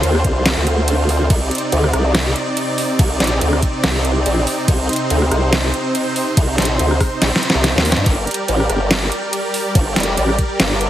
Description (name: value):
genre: heavy wobble dubstep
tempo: 142 BPM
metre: 4/4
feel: swing 55% on 16ths, half-time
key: unclear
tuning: A4 = 440 Hz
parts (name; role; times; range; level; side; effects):
- supersaw chords; sustained chords; 0.0-10.9 s; C3 to D5; -20 LUFS; right 1 dB; sidechain pumping
- formant-sweep wobble bass; bass; 0.0-10.9 s; F1 to G2; -17 LUFS; equal; chorus, overdrive
- dubstep drum kit; drums; 0.0-10.9 s; crash cymbal, hi-hat, rim click, snare drum; -20 LUFS; equal; none
- electronic kick drum; drums; 0.2-10.5 s; none; -16 LUFS; equal; none
room: light reverb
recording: heavily compressed radio sound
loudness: -14 LUFS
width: side -12 dB against mid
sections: 0.0-10.9 A section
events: drum fill 7.2-8.1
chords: 0.0 Dm7; 1.3 Cmadd9; 8.1 Gm